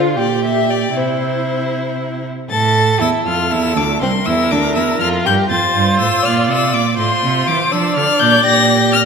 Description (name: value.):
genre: quick classical-period movement for string quartet.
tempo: 81 BPM (dotted quarters).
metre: 6/8.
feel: rubato.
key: F major.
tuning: A4 = 440 Hz.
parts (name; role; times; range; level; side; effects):
rich violin; second line; 0.0-9.1 s; C4 to A4; -19 LUFS; equal; none.
warm viola; accompaniment; 0.0-9.1 s; E4 to D5; -20 LUFS; right 2 dB; none.
clear cello; bass; 0.0-9.1 s; C2 to F3; -18 LUFS; right 4 dB; none.
warm violin; melody; 0.2-9.0 s; C5 to Bb6; -18 LUFS; left 6 dB; none.
room: wet concert hall reverb, RT60 1.8 s.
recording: minimal, uncompressed stereo recording.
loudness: -13 LUFS.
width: side -6 dB against mid.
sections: 0.0-2.5 A section; 2.5-9.1 B section.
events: none.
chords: 0.2 Gm/Bb; 0.9 C; 2.5 F; 4.0 C7; 5.5 F; 7.0 F5; 8.4 Gm/Bb.